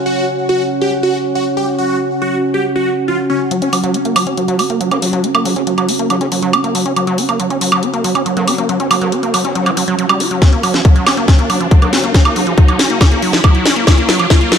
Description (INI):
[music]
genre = psychedelic trance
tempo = 139 BPM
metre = 4/4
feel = straight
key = F# major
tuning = A4 = 440 Hz
[part]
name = deep dark ambient pad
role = texture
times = 0.0-14.6 s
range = C#4 to F#5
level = -19 LUFS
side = right 2 dB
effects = chorus, built-in reverb, sidechain pumping
[part]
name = dense compressed supersaw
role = melody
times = 0.1-3.4 s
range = C#4 to G4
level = -18 LUFS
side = equal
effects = phaser, cassette tape, sidechain pumping, digital delay
[part]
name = overdriven acid bass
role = riff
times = 3.5-14.6 s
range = E#3 to F#4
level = -17 LUFS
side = equal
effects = auto-pan, sidechain pumping, digital delay
[part]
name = garage drum kit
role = drums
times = 3.5-14.6 s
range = hi-hat, snare drum, woodblock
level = -16 LUFS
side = right 2 dB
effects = studio reverb
[part]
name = riser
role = sound effects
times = 6.4-14.6 s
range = none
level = -22 LUFS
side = left 1 dB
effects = none
[part]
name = formant-sweep wobble bass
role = second line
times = 4.9-13.2 s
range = C#3 to A#3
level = -27 LUFS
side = left 2 dB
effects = none
[part]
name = electronic kick drum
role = drums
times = 10.4-14.4 s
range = none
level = -9 LUFS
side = left 1 dB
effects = studio reverb
[sound]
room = moderate lush hall reverb, RT60 2.3 s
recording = none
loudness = -11 LUFS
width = side -7 dB against mid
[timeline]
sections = 0.0-3.5 A section; 3.5-14.6 B section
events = build-up 3.5-14.6; filter sweep on acid bass 3.5-14.6; riser 6.4-14.6; drum fill 10.4-14.6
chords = 0.0 F#5